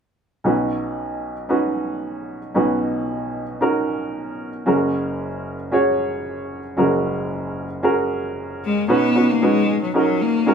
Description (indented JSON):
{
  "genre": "pop",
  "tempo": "114 BPM",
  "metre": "4/4",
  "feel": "straight",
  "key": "B major",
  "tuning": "A4 = 439 Hz",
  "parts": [
    { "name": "warm upright piano", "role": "accompaniment", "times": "0.4-10.5 s", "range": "F#1 to C#5", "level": "-20 LUFS", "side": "right 1 dB", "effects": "none" },
    { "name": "clear cello", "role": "melody", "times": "8.6-10.5 s", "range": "F#3 to B3", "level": "-19 LUFS", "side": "left 3 dB", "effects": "none" }
  ],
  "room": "wet studio ambience, RT60 0.5 s",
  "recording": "band playing live in one room",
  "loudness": "-19 LUFS",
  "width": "side -7 dB against mid",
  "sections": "0.4-8.9 A section; 8.9-10.5 B section",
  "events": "none",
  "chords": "0.4 Badd9; 4.7 F#add9; 8.9 Badd9",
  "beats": "| 0.45 0.98 1.50 2.03 | 2.56 3.09 3.62 4.14 | 4.67 5.20 5.73 6.25 | 6.78 7.31 7.84 8.36 | 8.89 9.42 9.95 10.47"
}